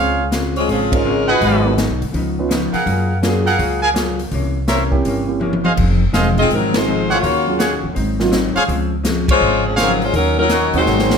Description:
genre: jazz, big band swing.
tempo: 165 BPM.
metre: 4/4.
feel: swing 65% on 8ths.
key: Db major.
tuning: A4 = 445 Hz.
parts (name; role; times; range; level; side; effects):
hollow-body jazz guitar; accompaniment; 0.0-11.1 s; F2 to Ab4; -22 LUFS; left 4 dB; none.
clear trumpet section; stabs; 0.0-10.9 s; Ab4 to Ab5; -19 LUFS; right 2 dB; none.
upright bass; bass; 0.0-11.2 s; Fb1 to Gb2; -20 LUFS; equal; none.
swinging big-band drum kit; drums; 0.3-11.2 s; crash cymbal, hi-hat, kick drum, ride cymbal, snare drum, toms; -23 LUFS; equal; none.
warm saxophone section; melody; 0.6-1.8, 6.4-11.2 s; F3 to Eb5; -17 LUFS; left 3 dB; none.
warm grand piano; accompaniment; 0.9-10.5 s; Gb3 to C5; -21 LUFS; right 5 dB; none.
clear trombone section; second line; 10.7-11.2 s; Eb3 to C4; -18 LUFS; right 4 dB; none.
room: moderate large studio reverb, RT60 0.9 s.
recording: none.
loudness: -14 LUFS.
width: side -6 dB against mid.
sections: 0.0-11.2 A section.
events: band accent 0.9, 6.7, 9.2; drum fill 5.4-5.8, 10.9-11.2.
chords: 0.0 Dbmaj7; 1.4 Abm7; 2.1 Db9; 2.9 Gbmaj9; 4.3 C7b9; 5.8 Fm7; 7.2 Ebm11; 8.0 Ab7; 8.7 Dbmaj7; 10.1 Ebm7.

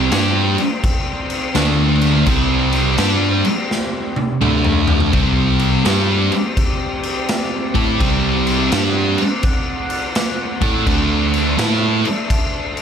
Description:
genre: stoner and doom metal.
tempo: 84 BPM.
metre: 4/4.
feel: swing 65% on 8ths.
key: unclear.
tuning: A4 = 438 Hz.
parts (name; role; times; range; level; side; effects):
analog drone; sustained chords; 0.0-12.8 s; C4 to G5; -28 LUFS; equal; chorus.
thick fuzz guitar; riff; 0.0-12.0 s; C3 to A4; -18 LUFS; right 1 dB; distortion.
thick fuzz guitar; riff; 0.0-12.0 s; C3 to A4; -20 LUFS; equal; distortion.
picked electric bass; bass; 0.0-12.0 s; C2 to A2; -20 LUFS; equal; overdrive.
raw garage drum kit; drums; 0.1-12.8 s; crash cymbal, kick drum, snare drum, toms; -20 LUFS; equal; none.
room: light reverb, studio reverb.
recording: none.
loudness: -14 LUFS.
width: side -8 dB against mid.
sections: 0.0-12.8 A section.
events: drum fill 3.7-5.1.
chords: 0.0 C5; 1.6 D5; 2.3 C5; 4.4 D5; 5.1 C5; 10.9 D5.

